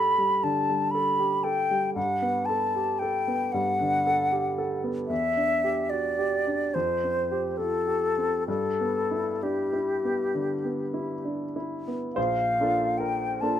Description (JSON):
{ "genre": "classical, impressionist duo for flute and grand piano", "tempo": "62-81 BPM", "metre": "4/4", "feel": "rubato", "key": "G major", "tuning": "A4 = 437 Hz", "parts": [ { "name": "mellow silver concert flute", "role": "melody", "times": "0.0-13.6 s", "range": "G4 to B5", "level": "-25 LUFS", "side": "left 2 dB", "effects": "none" }, { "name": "clear grand piano", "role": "accompaniment", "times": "0.0-13.6 s", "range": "Bb1 to C5", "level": "-29 LUFS", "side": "right 2 dB", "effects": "none" } ], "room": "light reverb", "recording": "minimal, uncompressed stereo recording", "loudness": "-24 LUFS", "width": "side -10 dB against mid", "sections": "0.0-12.2 A section; 12.2-13.6 B section", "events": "none", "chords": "0.0 Gadd9; 2.0 Bm7/G; 5.1 Em7; 6.7 Fadd9; 8.5 G69; 12.2 Bbmaj7" }